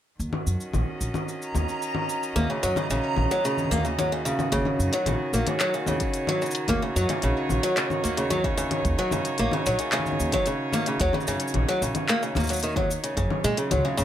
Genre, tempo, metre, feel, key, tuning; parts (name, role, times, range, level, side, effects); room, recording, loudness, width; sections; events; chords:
folktronica; 111 BPM; 4/4; straight; Eb minor; A4 = 438 Hz
dark string quartet; sustained chords; 0.2-14.0 s; Eb3 to Eb5; -31 LUFS; right 1 dB
upright bass; bass; 0.2-14.0 s; Gb1 to Bb2; -28 LUFS; equal
organic electronic drum kit; drums; 0.2-14.0 s; congas, handclaps, hi-hat, shaker; -30 LUFS; left 1 dB
backwards swelling texture; texture; 1.5-4.5, 13.2-14.0 s; Bb5 to Eb6; -34 LUFS; right 2 dB; built-in reverb
picked old ladder-braced acoustic guitar; arpeggios; 2.4-14.0 s; Db3 to Bb3; -26 LUFS; equal; digital delay
electronic kick drum; drums; 4.5-13.3 s; -30 LUFS; equal
light reverb; -23 LUFS; side -11 dB against mid
0.2-4.5 A section; 4.5-14.0 B section
kick drops out 2.4-4.5
0.2 Ebm7; 13.2 Gbmaj7sus2